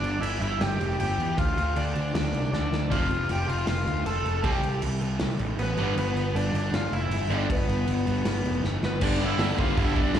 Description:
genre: punk rock.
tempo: 157 BPM.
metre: 4/4.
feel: straight.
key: unclear.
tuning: A4 = 440 Hz.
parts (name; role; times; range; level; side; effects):
crunchy overdriven guitar; melody; 0.0-10.2 s; B3 to A5; -29 LUFS; left 1 dB; spring reverb, slapback echo, analog delay.
fuzz picked electric bass; bass; 0.0-10.2 s; F1 to E2; -28 LUFS; equal; overdrive.
big rock drum kit; drums; 0.0-10.2 s; crash cymbal, hi-hat, kick drum, snare drum; -30 LUFS; equal; none.
distorted electric guitar; riff; 2.9-10.2 s; F2 to C4; -29 LUFS; right 1 dB; overdrive, slapback echo.
room: light reverb, small room ambience.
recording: live gig heard through the venue's PA, club reverb.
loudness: -24 LUFS.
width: side -9 dB against mid.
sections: 0.0-9.0 A section; 9.0-10.2 B section.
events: half time 0.0-9.0; drum fill 2.5-2.9, 8.6-9.0.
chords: 0.0 G5; 1.4 Dm; 2.9 F; 4.4 C5; 5.8 G; 9.0 G5.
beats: 0.22 0.60 0.99 | 1.37 1.75 2.14 2.52 | 2.91 3.29 3.67 4.06 | 4.44 4.82 5.20 5.59 | 5.97 6.35 6.73 7.11 | 7.50 7.88 8.26 8.64 | 9.02 9.40 9.78 10.15.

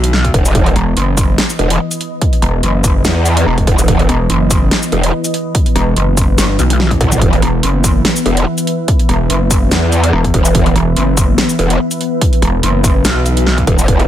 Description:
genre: heavy wobble dubstep.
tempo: 144 BPM.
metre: 4/4.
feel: swing 54% on 16ths, half-time.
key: unclear.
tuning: A4 = 442 Hz.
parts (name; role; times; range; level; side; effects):
lush unison pad; sustained chords; 0.0-14.1 s; E3 to A5; -18 LUFS; equal; chorus, phaser, sidechain pumping.
pulsing pluck wobble bass; bass; 0.0-13.7 s; E1 to B1; -13 LUFS; equal; chorus, overdrive.
dubstep drum kit; drums; 0.0-14.1 s; hi-hat, shaker, snare drum, toms; -17 LUFS; equal; none.
electronic kick drum; drums; 0.2-14.0 s; none; -14 LUFS; equal; none.
growl bass; bass; 0.3-14.1 s; E1 to E2; -12 LUFS; equal; chorus, overdrive.
room: little or no reverb.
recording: none.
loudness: -10 LUFS.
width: side -11 dB against mid.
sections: 0.0-14.1 A section.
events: drum fill 6.6-7.2.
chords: 0.0 E5.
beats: 0.13 | 0.55 0.96 1.38 1.80 | 2.21 2.63 3.05 3.46 | 3.88 4.30 4.71 5.13 | 5.55 5.96 6.38 6.80 | 7.21 7.63 8.05 8.46 | 8.88 9.30 9.71 10.13 | 10.55 10.96 11.38 11.80 | 12.21 12.63 13.05 13.46 | 13.88.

